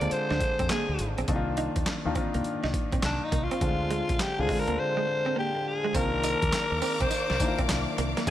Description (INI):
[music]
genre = R&B, new jack swing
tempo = 103 BPM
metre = 4/4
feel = swing 65% on 16ths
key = C minor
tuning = A4 = 440 Hz
[part]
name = raspy alto saxophone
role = melody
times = 0.0-7.6 s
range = D4 to D5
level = -29 LUFS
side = left 1 dB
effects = digital delay, shimmer reverb
[part]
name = warm concert grand piano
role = accompaniment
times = 0.0-8.3 s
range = D3 to Ab4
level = -32 LUFS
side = left 2 dB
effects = shimmer reverb
[part]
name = direct-recorded clean electric guitar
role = riff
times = 0.0-8.3 s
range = Ab3 to Eb4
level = -35 LUFS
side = right 5 dB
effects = lush chorus, shimmer reverb
[part]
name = deep dub fingered electric bass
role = bass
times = 0.0-8.3 s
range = Ab1 to F2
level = -32 LUFS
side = equal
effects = none
[part]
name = boom bap sampler-style drum kit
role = drums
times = 0.0-8.3 s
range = handclaps, hi-hat, kick drum, snare drum, tambourine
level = -31 LUFS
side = equal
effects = none
[part]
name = warm studio string section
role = sustained chords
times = 5.9-8.3 s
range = Bb4 to D6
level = -34 LUFS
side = left 2 dB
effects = shimmer reverb
[sound]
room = light reverb, small room ambience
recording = none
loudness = -25 LUFS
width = side -12 dB against mid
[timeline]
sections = 0.0-5.9 A section; 5.9-8.3 B section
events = none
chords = 0.0 Dm7b5; 1.3 Cm11; 3.6 Dm7b5; 5.9 Cm11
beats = 0.12 0.70 | 1.28 1.86 2.45 3.03 | 3.61 4.20 4.78 5.36 | 5.94 6.53 7.11 7.69 | 8.27